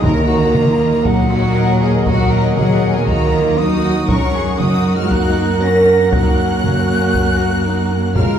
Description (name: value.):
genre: cinematic, epic orchestral film score.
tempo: 118 BPM.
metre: 4/4.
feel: straight.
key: unclear.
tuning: A4 = 440 Hz.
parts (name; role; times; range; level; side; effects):
warm symphonic violin section; melody; 0.0-8.4 s; Gb5 to Bb6; -28 LUFS; left 2 dB; none.
bright silver concert flute; second line; 0.0-8.4 s; Gb5 to Bb6; -26 LUFS; left 2 dB; none.
warm symphonic violin section; second line; 0.0-8.4 s; Db4 to Bb4; -25 LUFS; left 2 dB; none.
rich symphonic viola section; accompaniment; 0.0-8.4 s; Ab4 to Gb5; -27 LUFS; equal; none.
dark French horn section; sustained chords; 0.0-8.4 s; Gb3 to Bb4; -17 LUFS; equal; none.
warm trombone section; sustained chords; 0.0-8.4 s; Db3 to Bb3; -26 LUFS; right 5 dB; none.
dark symphonic cello section; bass; 0.0-8.4 s; Bb2 to Db4; -20 LUFS; right 2 dB; none.
rich symphonic double bass section; bass; 0.0-8.4 s; Db2 to Gb2; -20 LUFS; right 2 dB; none.
taiko ensemble; drums; 0.0-8.4 s; none; -20 LUFS; equal; none.
timpani; percussion; 0.0-0.7 s; Eb3; -26 LUFS; left 1 dB; none.
room: wet recital hall reverb, RT60 1.7 s.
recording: heard from further back in the room.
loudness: -12 LUFS.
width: side -9 dB against mid.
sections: 0.0-8.4 A section.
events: none.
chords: 0.0 Ebm; 4.1 Gb.